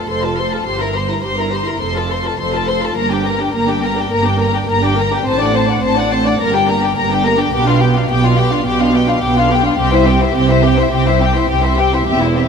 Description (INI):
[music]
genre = quick classical-period movement for string orchestra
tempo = 105 BPM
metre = 4/4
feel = rubato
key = C major from 7.5 s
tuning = A4 = 438 Hz
[part]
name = warm symphonic violin section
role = melody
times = 0.0-12.5 s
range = C5 to C6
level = -19 LUFS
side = left 6 dB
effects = none
[part]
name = warm studio violin section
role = second line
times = 0.0-12.5 s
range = E4 to D5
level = -19 LUFS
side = left 4 dB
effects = none
[part]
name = dark symphonic viola section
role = accompaniment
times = 0.0-12.5 s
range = Bb3 to A4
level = -20 LUFS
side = right 1 dB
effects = none
[part]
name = warm symphonic cello section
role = bass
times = 0.0-12.5 s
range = E2 to C3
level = -20 LUFS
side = right 4 dB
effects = none
[part]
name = warm symphonic double bass section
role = bass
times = 0.0-12.5 s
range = E1 to C2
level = -20 LUFS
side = right 3 dB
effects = none
[sound]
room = moderate concert hall reverb, RT60 2.3 s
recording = none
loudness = -12 LUFS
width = side -6 dB against mid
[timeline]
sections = 0.0-12.5 A section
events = none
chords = 0.0 F; 0.7 C7/G; 1.8 F; 3.0 Gm; 5.3 D7/A; 6.4 Gm; 7.5 G7/B; 9.8 C